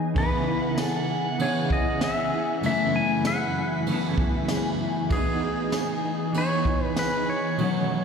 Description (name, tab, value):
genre	dream pop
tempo	97 BPM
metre	4/4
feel	straight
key	unclear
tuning	A4 = 439 Hz
part	ethereal airy pad	sustained chords	0.0-8.0 s	E3 to G#5	-30 LUFS	left 1 dB	ensemble chorus, built-in reverb
part	mellow electric guitar	arpeggios	0.0-8.0 s	F#3 to G#4	-30 LUFS	left 3 dB	ensemble chorus, ping-pong delay
part	semi-hollow electric guitar	accompaniment	0.1-8.0 s	F#2 to A4	-30 LUFS	right 4 dB	tremolo, lush chorus
part	clean lap steel guitar	melody	0.2-8.0 s	G#4 to G#5	-29 LUFS	left 2 dB	ping-pong delay
part	jazz brush drum kit	drums	0.2-7.7 s	kick drum, ride cymbal, snare drum, tambourine	-30 LUFS	right 1 dB	none
part	drifting glass-harmonics texture	texture	0.5-7.9 s	F#5 to C#6	-38 LUFS	right 4 dB	chorus, built-in reverb, ping-pong delay
room	light reverb, small room ambience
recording	played on a big sound system in a bare room, stone room reverb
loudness	-22 LUFS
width	side -6 dB against mid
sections	0.0-8.0 A section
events	none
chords	0.2 C#m7; 2.6 F#m11; 5.1 Emaj7